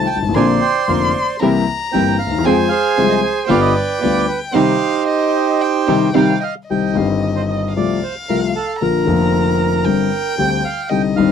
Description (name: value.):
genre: tango.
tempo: 114 BPM.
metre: 4/4.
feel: rubato.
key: C minor.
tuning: A4 = 441 Hz.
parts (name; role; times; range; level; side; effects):
bandoneon; melody; 0.0-11.3 s; Eb4 to Ab5; -18 LUFS; right 9 dB; none.
warm violin; second line; 0.0-11.3 s; Eb5 to C6; -23 LUFS; left 4 dB; none.
warm concert grand piano; accompaniment; 0.0-11.3 s; F1 to Ab4; -16 LUFS; left 5 dB; none.
warm studio string section; stabs; 0.0-6.3 s; B3 to Bb4; -20 LUFS; right 7 dB; none.
room: light reverb.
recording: dry, close 1970s-style studio recording.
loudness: -14 LUFS.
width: side -8 dB against mid.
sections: 0.0-6.7 A section; 6.7-11.3 A section.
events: band accent 4.5-6.7.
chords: 0.3 Bbadd9; 1.4 C7; 2.4 Fm; 3.5 G7; 4.5 Cm; 7.7 F/C; 8.8 Bb; 9.9 Gsus4.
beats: | 0.34 0.87 1.40 1.92 | 2.44 2.96 3.49 4.02 | 4.54 5.07 5.61 6.14 | 6.68 7.21 7.74 8.27 | 8.80 9.33 9.86 10.38 | 10.91.